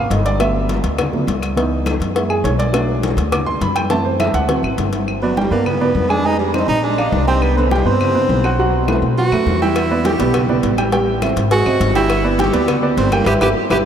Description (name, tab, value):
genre	Afro-Cuban jazz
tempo	205 BPM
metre	4/4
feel	straight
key	G major from 5.1 s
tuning	A4 = 440 Hz
part	dark baby grand piano	accompaniment	0.0-13.8 s	E3 to D6	-18 LUFS	right 2 dB	none
part	upright bass	bass	0.0-13.8 s	G1 to B2	-20 LUFS	left 1 dB	none
part	congas	percussion	0.1-13.8 s	none	-24 LUFS	left 3 dB	none
part	cowbell	percussion	0.1-5.1, 9.8-13.8 s	none	-25 LUFS	left 4 dB	none
part	claves	percussion	0.4-13.8 s	none	-32 LUFS	left 6 dB	none
part	warm tenor saxophone	second line	5.2-13.8 s	D3 to G4	-18 LUFS	right 2 dB	diffuse ambient delay
room	wet huge ambient reverb, RT60 8.3 s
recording	dreamy mix soaked in reverb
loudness	-14 LUFS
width	side -8 dB against mid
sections	0.0-5.1 A section; 5.1-13.9 A section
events	grand piano solo 0.0-5.1; tenor saxophone solo 5.1-13.9; band accent 13.3-13.9; drum fill 13.6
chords	0.4 Gmaj9; 1.6 C#m7; 2.2 F#7; 2.7 Bm7; 3.9 F#m7b5; 4.5 D7; 5.1 G; 6.2 Fm7; 6.8 Bb9; 7.4 C5; 8.6 B5; 9.8 Em7; 10.9 Am7; 11.5 Ab7; 12.1 G6